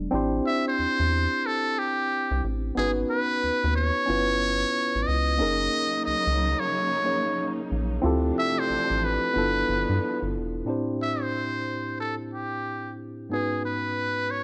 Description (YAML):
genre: R&B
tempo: 91 BPM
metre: 4/4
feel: swing 62% on 16ths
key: unclear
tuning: A4 = 440 Hz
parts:
  - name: tine electric piano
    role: accompaniment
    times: 0.0-14.4 s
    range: G#2 to C#5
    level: -31 LUFS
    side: equal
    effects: plate reverb
  - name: rubbery square bass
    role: bass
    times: 0.0-10.6 s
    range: E1 to G2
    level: -30 LUFS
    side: equal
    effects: none
  - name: trumpet with metal mute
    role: melody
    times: 0.5-14.4 s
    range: G4 to E5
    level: -28 LUFS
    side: equal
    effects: slapback echo, plate reverb
  - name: warm studio string section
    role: sustained chords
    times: 5.4-10.6 s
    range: C3 to D#4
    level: -38 LUFS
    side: equal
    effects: plate reverb
room: moderate studio reverb, RT60 0.5 s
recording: none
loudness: -26 LUFS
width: mono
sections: 0.1-10.7 A section; 10.7-14.4 B section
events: none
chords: 0.1 Am7; 2.8 G#m7; 4.1 G7#11; 5.4 F#6; 8.0 Dm7; 9.3 G7; 10.7 Am7; 13.3 G#m7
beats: | 0.11 0.77 1.43 2.09 | 2.75 3.41 4.07 4.73 | 5.39 6.05 6.71 7.37 | 8.03 8.69 9.34 10.00 | 10.66 11.32 11.98 12.64 | 13.30 13.96